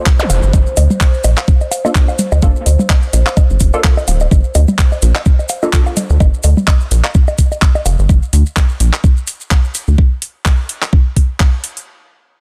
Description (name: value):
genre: minimal techno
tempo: 127 BPM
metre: 4/4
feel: swing 56% on 16ths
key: unclear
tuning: A4 = 440 Hz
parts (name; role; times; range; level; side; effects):
- warbly tape-like pad; texture; 0.0-6.2 s; C5; -29 LUFS; equal; chorus, built-in reverb, sidechain pumping
- electronic kick drum; drums; 0.1-11.5 s; none; -13 LUFS; equal; none
- garage drum kit; drums; 0.1-11.9 s; handclaps, hi-hat; -22 LUFS; equal; soft clipping on snare
- maracas; percussion; 0.1-10.0 s; none; -30 LUFS; equal; none
- bongos, woodblock and congas; percussion; 0.2-8.0 s; none; -21 LUFS; equal; tape echo
- rubbery square bass; bass; 0.3-10.0 s; D1 to D2; -13 LUFS; equal; tube saturation, sidechain pumping
- filtered dub chord stab; stabs; 1.8-5.7 s; Bb3 to A4; -24 LUFS; equal; phaser, ensemble chorus, tape echo
room: little or no reverb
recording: dense, heavily limited modern master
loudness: -13 LUFS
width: mono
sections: 0.0-11.9 A section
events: drop 0.0-11.9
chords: none